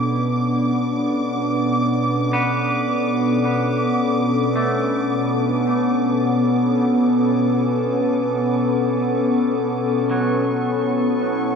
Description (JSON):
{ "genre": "ambient", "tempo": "free time", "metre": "none", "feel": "none", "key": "B minor", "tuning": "A4 = 438 Hz", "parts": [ { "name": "warbly tape-like pad", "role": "sustained chords", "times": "0.0-11.6 s", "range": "B2 to A4", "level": "-19 LUFS", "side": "left 1 dB", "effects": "chorus, built-in reverb" }, { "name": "organ-like drone", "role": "drone", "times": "0.0-11.6 s", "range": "B3", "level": "-24 LUFS", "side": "equal", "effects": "ensemble chorus, built-in reverb" }, { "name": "muted chamber violin section", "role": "texture", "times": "0.0-11.6 s", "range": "C#6 to D6", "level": "-28 LUFS", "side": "right 1 dB", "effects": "none" }, { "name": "clean electric guitar", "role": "arpeggios", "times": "2.3-11.6 s", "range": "F#3 to B3", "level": "-28 LUFS", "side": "right 1 dB", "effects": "analog delay" } ], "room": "wet spring reverb, RT60 2.3 s", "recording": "echo-heavy mix", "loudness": "-17 LUFS", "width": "side -6 dB against mid", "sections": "0.0-11.6 A section", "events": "none", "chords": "0.0 Bm7; 10.1 F#m7/B" }